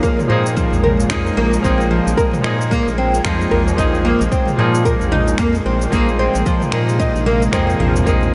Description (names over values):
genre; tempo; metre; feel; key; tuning
organic downtempo; 112 BPM; 4/4; swing 59% on 16ths; Bb minor; A4 = 440 Hz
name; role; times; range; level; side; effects
semi-hollow electric guitar; accompaniment; 0.0-8.3 s; F3 to Ab4; -24 LUFS; equal; sidechain pumping, delay
bowed-like drone; sustained chords; 0.0-8.3 s; Bb2 to Ab3; -25 LUFS; equal; built-in reverb, sidechain pumping
oud; arpeggios; 0.0-8.2 s; F3 to Bb4; -21 LUFS; equal; low-pass filter, delay
deep house drum kit; drums; 0.0-8.3 s; cabasa, finger snaps, toms; -30 LUFS; equal; small room ambience
electronic kick drum; drums; 0.0-8.2 s; none; -23 LUFS; equal; small room ambience
bronze singing bowl; texture; 0.0-8.3 s; Db5; -41 LUFS; equal; none
round analog bass; bass; 0.3-8.3 s; Bb1 to Bb2; -22 LUFS; equal; sidechain pumping
tabla; percussion; 0.7-8.3 s; none; -28 LUFS; equal; none
room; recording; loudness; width
moderate huge ambient reverb, RT60 8.0 s; dreamy mix soaked in reverb, nothing above 10.9 kHz; -16 LUFS; mono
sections
0.0-8.3 A section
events
none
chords
0.0 Bbm7